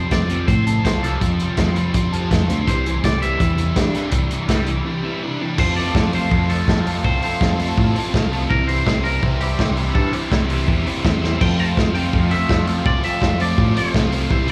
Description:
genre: indie rock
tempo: 165 BPM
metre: 4/4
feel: straight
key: F major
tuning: A4 = 440 Hz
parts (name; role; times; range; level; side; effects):
- twangy electric guitar; melody; 0.0-14.5 s; G4 to A5; -28 LUFS; equal; slapback echo
- biting overdriven guitar; riff; 0.0-14.5 s; C3 to A4; -27 LUFS; equal; analog chorus, slapback echo
- overdriven electric guitar; riff; 0.0-14.5 s; F2 to F4; -28 LUFS; equal; phaser
- picked electric bass; bass; 0.0-14.5 s; C2 to A2; -24 LUFS; equal; none
- vintage drum kit; drums; 0.1-14.5 s; crash cymbal, hi-hat, kick drum, snare drum; -23 LUFS; equal; none
room: little or no reverb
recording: live gig heard through the venue's PA, club reverb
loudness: -19 LUFS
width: mono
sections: 0.0-5.6 A section; 5.6-14.5 B section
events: break 4.9-5.6; drum fill 11.2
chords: 0.0 Fadd9; 2.7 Cadd9; 5.6 F; 8.5 C; 11.4 F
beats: 0.12 0.48 0.85 | 1.21 1.58 1.94 2.31 | 2.67 3.04 3.40 3.77 | 4.13 4.49 4.86 5.22 | 5.59 5.95 6.32 6.68 | 7.04 7.41 7.77 8.14 | 8.50 8.86 9.23 9.59 | 9.96 10.32 10.68 11.04 | 11.41 11.77 12.13 12.50 | 12.86 13.22 13.59 13.95 | 14.31

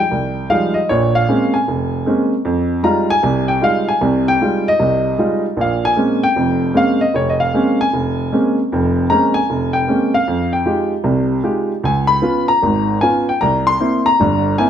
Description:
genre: solo jazz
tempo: 153 BPM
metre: 4/4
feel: swing 64% on 8ths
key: F minor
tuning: A4 = 440 Hz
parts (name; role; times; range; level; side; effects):
- warm grand piano; solo; 0.0-14.7 s; F1 to C6; -14 LUFS; equal; none
room: moderate large studio reverb, RT60 1.4 s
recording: none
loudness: -14 LUFS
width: side -9 dB against mid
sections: 0.0-14.7 A section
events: none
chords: 0.0 Fm9; 0.9 Bbm9; 2.5 Fm9; 5.6 Bbm9; 10.3 Fm9; 11.8 Db7; 13.4 C7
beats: 0.11 0.50 | 0.89 1.28 1.67 2.06 | 2.45 2.84 3.23 3.62 | 4.01 4.40 4.79 5.18 | 5.57 5.96 6.35 6.75 | 7.14 7.53 7.92 8.31 | 8.70 9.09 9.49 9.88 | 10.27 10.66 11.05 11.45 | 11.84 12.23 12.63 13.02 | 13.41 13.80 14.20 14.59

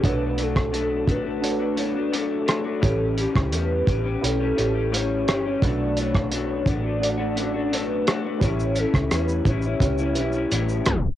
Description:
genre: indie pop, bedroom pop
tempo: 86 BPM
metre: 4/4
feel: straight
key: B minor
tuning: A4 = 440 Hz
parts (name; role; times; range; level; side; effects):
- dark upright piano; accompaniment; 0.0-11.2 s; C#4 to E5; -31 LUFS; right 7 dB; none
- electric guitar through a small old amp; accompaniment; 0.0-11.2 s; A2 to G4; -26 LUFS; left 6 dB; analog chorus, warbly pitch drift
- vintage muted fingered electric bass; bass; 0.0-11.1 s; E1 to E2; -27 LUFS; right 1 dB; transformer saturation
- cloth-damped thuddy drum kit; drums; 0.0-11.2 s; hi-hat, kick drum, rim click, shaker; -24 LUFS; right 1 dB; vintage 12-bit sampler grit
- soft octave-layered synth lead; melody; 0.1-10.9 s; G4 to D5; -29 LUFS; equal; ensemble chorus, cassette tape, tape echo
room: moderate booth ambience, RT60 0.2 s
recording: home recording on cassette, tape stop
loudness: -21 LUFS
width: side -12 dB against mid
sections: 0.0-11.2 A section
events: tape stop 10.9-11.2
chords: 0.0 Bm7; 2.8 A7; 5.6 Bm7; 8.4 A7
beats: | 0.04 0.74 1.44 2.14 | 2.83 3.53 4.23 4.93 | 5.62 6.32 7.02 7.72 | 8.42 9.11 9.81 10.51

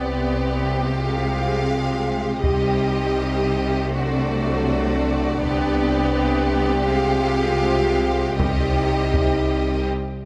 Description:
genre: cinematic, epic orchestral film score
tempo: free time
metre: none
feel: none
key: C harmonic minor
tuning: A4 = 445 Hz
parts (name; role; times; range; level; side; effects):
- warm studio violin section; melody; 0.0-9.9 s; D5 to F5; -34 LUFS; equal; none
- clear symphonic violin section; second line; 0.0-9.9 s; F#4 to G4; -30 LUFS; equal; none
- rich symphonic viola section; accompaniment; 0.0-9.9 s; G3 to B3; -29 LUFS; equal; none
- warm French horn section; sustained chords; 0.0-9.9 s; F#3 to G4; -28 LUFS; equal; none
- bright symphonic double bass section; bass; 0.0-9.9 s; C2; -28 LUFS; equal; none
- clear symphonic cello section; bass; 0.0-9.9 s; C3; -28 LUFS; equal; none
- taiko ensemble; drums; 2.4-9.6 s; none; -28 LUFS; equal; none
room: moderate scoring stage reverb, RT60 1.7 s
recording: none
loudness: -21 LUFS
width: mono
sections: 0.0-10.3 A section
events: build-up 0.0-10.3; break 9.9-10.3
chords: 0.0 G/C; 0.9 Fmadd9/C; 2.4 Cm; 3.9 D7/C; 5.4 G/C; 6.9 Fmadd9/C; 8.4 Cm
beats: free time

